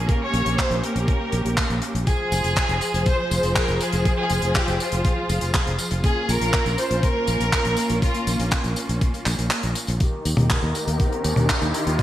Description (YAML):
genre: italo disco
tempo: 121 BPM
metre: 4/4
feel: straight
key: unclear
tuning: A4 = 440 Hz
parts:
  - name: rich chamber violin section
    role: melody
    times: 0.0-8.5 s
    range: F4 to Db5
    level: -25 LUFS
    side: equal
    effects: digital delay
  - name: rich studio string section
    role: sustained chords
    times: 0.0-12.0 s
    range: Eb3 to C5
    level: -27 LUFS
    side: equal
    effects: low-pass filter
  - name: fingered electric bass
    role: bass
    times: 0.0-12.0 s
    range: F1 to Eb2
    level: -24 LUFS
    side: equal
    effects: none
  - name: damped 70s drum kit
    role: drums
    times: 0.1-12.0 s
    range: handclaps, hi-hat, tambourine, toms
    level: -26 LUFS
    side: equal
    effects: studio reverb, gated reverb
  - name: electronic kick drum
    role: drums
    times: 0.1-12.0 s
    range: none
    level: -23 LUFS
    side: equal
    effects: studio reverb
  - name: riser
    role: sound effects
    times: 10.7-12.0 s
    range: none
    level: -30 LUFS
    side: equal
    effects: none
room: moderate plate reverb, RT60 2.0 s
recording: bright 1980s-style digital production, vinyl crackle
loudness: -19 LUFS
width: side -13 dB against mid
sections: 0.0-10.0 A section; 10.0-12.0 B section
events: kick drops out 9.5-10.0; filter sweep on string section 10.0-12.0; riser 10.7-12.0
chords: 0.0 Bbm; 2.1 Fm; 6.0 Bbm; 10.0 Eb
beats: | 0.09 0.58 1.08 1.58 | 2.07 2.57 3.06 3.56 | 4.05 4.55 5.05 5.54 | 6.04 6.53 7.03 7.53 | 8.02 8.52 9.01 9.51 | 10.01 10.50 11.00 11.49 | 11.99